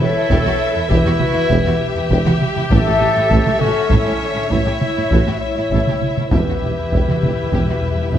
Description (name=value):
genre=cinematic, epic orchestral film score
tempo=66 BPM (dotted quarters)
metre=12/8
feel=straight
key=A mixolydian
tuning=A4 = 440 Hz
part: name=warm symphonic violin section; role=melody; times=0.0-8.2 s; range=E5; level=-26 LUFS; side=left 3 dB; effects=none
part: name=large flute ensemble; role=second line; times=0.0-8.2 s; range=C#4 to A4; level=-29 LUFS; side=left 1 dB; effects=none
part: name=warm symphonic violin section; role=second line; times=0.0-8.2 s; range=E4 to C#5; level=-31 LUFS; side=left 1 dB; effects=none
part: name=warm symphonic viola section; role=accompaniment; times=0.0-8.2 s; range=D3 to A4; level=-26 LUFS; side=right 1 dB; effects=none
part: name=dark French horn section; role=sustained chords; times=0.0-8.2 s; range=A4 to E5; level=-22 LUFS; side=left 5 dB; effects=none
part: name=mellow trumpet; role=stabs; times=0.0-8.2 s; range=C#4 to A4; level=-26 LUFS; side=right 3 dB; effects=none
part: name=mellow tuba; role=bass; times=0.0-8.2 s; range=E1 to A1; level=-24 LUFS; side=right 4 dB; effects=none
part: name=warm symphonic cello section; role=bass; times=0.0-8.2 s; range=E2 to A2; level=-23 LUFS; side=right 2 dB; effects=none
part: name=warm symphonic double bass section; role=bass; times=0.0-8.2 s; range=E1 to A1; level=-24 LUFS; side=right 2 dB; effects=none
part: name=taiko ensemble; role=drums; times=0.0-8.2 s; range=none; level=-20 LUFS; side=equal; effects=none
part: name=timpani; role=percussion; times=2.7-8.2 s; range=E2 to A2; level=-25 LUFS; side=left 1 dB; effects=none
room=moderate scoring stage reverb, RT60 1.9 s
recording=close, detailed microphones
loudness=-14 LUFS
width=side -10 dB against mid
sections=0.0-8.2 A section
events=timpani fill 6.3-8.2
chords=0.0 Em; 2.7 A; 6.3 Em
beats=0.00 0.90 1.80 | 2.71 3.61 4.52 5.42 | 6.32 7.22 8.13